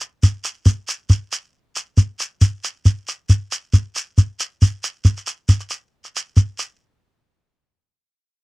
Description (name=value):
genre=highlife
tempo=137 BPM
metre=4/4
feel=straight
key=none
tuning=none
part: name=shekere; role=percussion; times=0.0-6.8 s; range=none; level=-14 LUFS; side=equal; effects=none
room=moderate booth ambience, RT60 0.2 s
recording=dry, close 1970s-style studio recording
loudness=-17 LUFS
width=side -23 dB against mid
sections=0.0-6.6 A section; 6.6-8.4 B section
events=none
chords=none